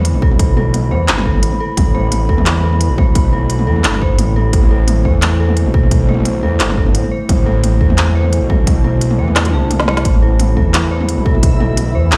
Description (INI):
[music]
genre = half-time drum and bass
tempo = 174 BPM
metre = 4/4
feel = swing 53% on 16ths, half-time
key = A minor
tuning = A4 = 440 Hz
[part]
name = dark analog pad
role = sustained chords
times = 0.0-12.2 s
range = A3 to B5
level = -24 LUFS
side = equal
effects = chorus, vintage 12-bit sampler grit, sidechain pumping
[part]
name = dark detuned synth bell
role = arpeggios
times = 0.0-12.2 s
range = A4 to A5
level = -27 LUFS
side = equal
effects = chorus, delay
[part]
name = dark detuned saw bass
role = bass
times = 0.0-12.2 s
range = G1 to E2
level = -17 LUFS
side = equal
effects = none
[part]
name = organic electronic drum kit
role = drums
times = 0.0-12.2 s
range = handclaps, hi-hat, snare drum, toms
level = -21 LUFS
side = equal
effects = none
[part]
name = electronic kick drum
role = drums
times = 0.2-11.5 s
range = none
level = -17 LUFS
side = equal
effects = none
[part]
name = backwards swelling texture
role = texture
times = 10.6-12.2 s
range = E4 to E5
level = -32 LUFS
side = equal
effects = built-in reverb
[sound]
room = light reverb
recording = played on a big sound system in a bare room, stone room reverb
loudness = -14 LUFS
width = mono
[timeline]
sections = 0.0-12.2 A section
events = kick drops out 9.4-10.1; drum fill 9.4-10.1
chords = 0.0 A5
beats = 0.05 | 0.40 0.74 1.08 1.43 | 1.77 2.12 2.46 2.81 | 3.15 3.50 3.84 4.19 | 4.53 4.88 5.22 5.57 | 5.91 6.26 6.60 6.95 | 7.29 7.64 7.98 8.33 | 8.67 9.02 9.36 9.71 | 10.05 10.39 10.74 11.09 | 11.43 11.77 12.12